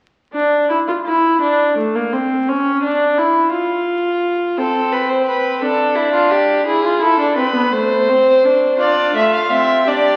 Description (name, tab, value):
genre	classical, baroque-style fugue for string quartet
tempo	57 BPM (dotted quarters)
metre	6/8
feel	straight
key	D minor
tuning	A4 = 440 Hz
part	warm viola	accompaniment	0.3-10.2 s	A3 to F4	-18 LUFS	equal	none
part	rich violin	second line	4.6-10.2 s	E4 to C5	-18 LUFS	equal	none
part	warm violin	melody	8.8-10.2 s	D5 to F5	-18 LUFS	equal	none
room	wet scoring stage reverb, RT60 1.6 s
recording	very old 78 rpm record, vinyl crackle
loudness	-16 LUFS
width	mono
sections	0.3-10.2 A section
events	none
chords	0.3 N.C.; 4.6 Am/C; 5.6 Dsus4; 6.7 E7; 7.7 Am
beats	| 0.34 1.42 | 2.48 3.53 | 4.58 5.62 | 6.67 7.73 | 8.79 9.87